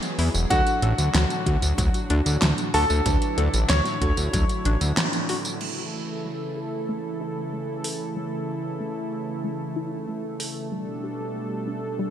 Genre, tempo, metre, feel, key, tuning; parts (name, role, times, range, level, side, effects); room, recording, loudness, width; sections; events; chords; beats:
synthwave; 94 BPM; 4/4; straight; A major; A4 = 440 Hz
bright electric grand piano; melody; 0.0-5.5 s; F#4 to C#5; -28 LUFS; equal; lush chorus, ping-pong delay
soft synth bell; second line; 0.0-5.5 s; F#5 to C#6; -35 LUFS; left 3 dB
warm analog pad; sustained chords; 0.0-12.1 s; A2 to A4; -30 LUFS; right 1 dB; chorus, sidechain pumping
analog pluck; arpeggios; 0.0-12.1 s; F#3 to C#5; -34 LUFS; left 3 dB; chorus, ping-pong delay
mellow FM electric piano; stabs; 0.0-5.6 s; G#3 to B4; -35 LUFS; right 3 dB; chorus, ping-pong delay
pop drum kit; drums; 0.0-10.5 s; crash cymbal, handclaps, hi-hat, snare drum, tambourine; -27 LUFS; right 1 dB; studio reverb, gated reverb
fat analog bass; bass; 0.2-4.9 s; E1 to E2; -22 LUFS; equal
electronic kick drum; drums; 0.5-4.5 s; -25 LUFS; equal; studio reverb
moderate plate reverb, RT60 2.9 s; bright 1980s-style digital production; -22 LUFS; side -10 dB against mid
0.0-5.6 A section; 5.6-12.1 B section
band accent 5.0-5.3; filter sweep on synth arpeggio sound 5.6-12.1
0.0 Eadd9; 0.5 D; 5.6 A; 10.7 Gadd9
| 0.51 1.14 1.78 2.42 | 3.06 3.70 4.34 4.97 | 5.61 6.25 6.89 7.53 | 8.17 8.80 9.44 10.08 | 10.72 11.36 11.99